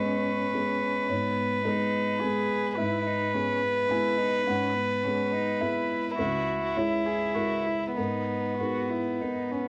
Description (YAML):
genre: neoclassical piano and strings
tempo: 94-108 BPM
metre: 3/4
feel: rubato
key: G# minor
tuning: A4 = 441 Hz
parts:
  - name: rich violin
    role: melody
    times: 0.0-9.6 s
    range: B3 to B4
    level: -30 LUFS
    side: equal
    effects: cassette tape
  - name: warm cello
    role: second line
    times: 0.0-9.7 s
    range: B3 to G#4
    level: -36 LUFS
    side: equal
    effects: cassette tape
  - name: felt-muted upright piano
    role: accompaniment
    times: 0.0-9.7 s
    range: C#2 to G#5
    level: -34 LUFS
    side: equal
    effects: cassette tape
room: moderate booth ambience, RT60 0.2 s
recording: home recording on cassette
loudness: -28 LUFS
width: mono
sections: 0.0-9.7 A section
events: none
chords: 0.0 G#m; 6.2 C#m7; 8.0 G#madd9